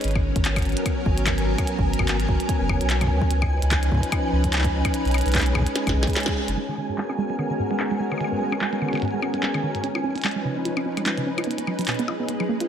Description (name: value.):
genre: IDM.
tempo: 147 BPM.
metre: 4/4.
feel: swing 56% on 16ths.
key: G# dorian.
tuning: A4 = 439 Hz.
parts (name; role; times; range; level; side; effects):
soft string machine; sustained chords; 0.0-12.7 s; E#3 to B4; -26 LUFS; left 1 dB; ensemble chorus, vintage 12-bit sampler grit.
warm sub bass; bass; 0.0-6.6 s; F#1 to D#2; -23 LUFS; equal; none.
glitchy drum kit; drums; 0.0-12.7 s; handclaps, hi-hat, percussion blips, snare drum; -28 LUFS; left 1 dB; low-pass filter on hats, low-pass filter on perc, low-pass filter on snare, tape echo.
flickering grainy texture; texture; 0.8-12.7 s; G#5; -32 LUFS; right 2 dB; built-in reverb.
electronic kick drum; drums; 0.2-6.3 s; none; -25 LUFS; equal; none.
warbly dusty pluck; arpeggios; 6.6-12.7 s; G#2 to E#4; -28 LUFS; right 3 dB; chorus, cassette tape, ping-pong delay.
room: light reverb.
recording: none.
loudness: -21 LUFS.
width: side -9 dB against mid.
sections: 0.0-6.6 A section; 6.6-12.7 B section.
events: drum fill 5.8-6.6; band accent 6.2; filter sweep on drum 6.6-12.7; filter sweep on string machine 6.6-12.7; filter sweep on synth arpeggio sound 6.6-12.7.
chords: 0.0 G#m11; 3.3 C#9; 4.9 B69; 6.6 G#m11; 9.8 C#9; 11.5 B69.